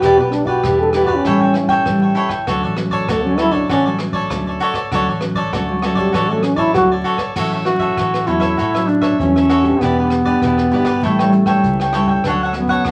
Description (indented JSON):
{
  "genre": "samba and choro",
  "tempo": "98 BPM",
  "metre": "4/4",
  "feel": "straight",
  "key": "D major, A major from 7.4 s",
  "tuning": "A4 = 440 Hz",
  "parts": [
    { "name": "breathy trombone", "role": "second line", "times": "0.0-6.9 s", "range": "F#3 to A4", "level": "-18 LUFS", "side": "equal", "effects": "none" },
    { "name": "cavaquinho", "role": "accompaniment", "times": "0.0-12.9 s", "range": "D4 to G5", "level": "-22 LUFS", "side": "equal", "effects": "none" },
    { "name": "nylon-string guitar", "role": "accompaniment", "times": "0.0-12.9 s", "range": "A2 to G4", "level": "-23 LUFS", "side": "equal", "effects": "none" },
    { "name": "vintage muted fingered electric bass", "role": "bass", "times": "0.0-12.9 s", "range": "E1 to A2", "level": "-26 LUFS", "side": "equal", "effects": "none" },
    { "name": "vintage brush drum kit", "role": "drums", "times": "0.0-12.9 s", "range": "crash cymbal, hi-hat, kick drum, rim click", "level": "-30 LUFS", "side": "equal", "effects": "none" },
    { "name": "breathy duduk", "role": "melody", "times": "7.7-12.9 s", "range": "A3 to F#4", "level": "-18 LUFS", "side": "equal", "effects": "none" }
  ],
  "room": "wet studio reverb, RT60 0.6 s",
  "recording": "vinyl crackle",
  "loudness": "-16 LUFS",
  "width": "mono",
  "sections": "0.0-7.4 A section; 7.4-12.9 B section",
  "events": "trombone solo 0.0-7.4",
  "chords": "0.0 Em7; 1.3 A7; 2.5 Dmaj7; 7.4 A6; 9.8 Em7; 11.0 A7; 12.3 Dmaj7"
}